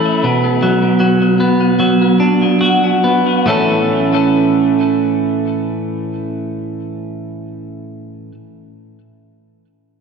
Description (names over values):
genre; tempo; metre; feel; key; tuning
rock; 68-80 BPM; 4/4; straight; A major; A4 = 442 Hz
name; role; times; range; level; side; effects
twelve-string electric guitar; arpeggios; 0.0-8.3 s; A2 to A4; -13 LUFS; right 1 dB; spring reverb, ping-pong delay
room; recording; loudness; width
wet church reverb, RT60 2.7 s; dreamy mix soaked in reverb; -12 LUFS; side -5 dB against mid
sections
0.0-3.5 A section; 3.5-7.0 B section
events
slowing down 0.0-3.5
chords
0.2 Bm; 3.5 A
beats
| 0.24 1.01 1.80 2.62 | 3.48 4.36 5.23 6.11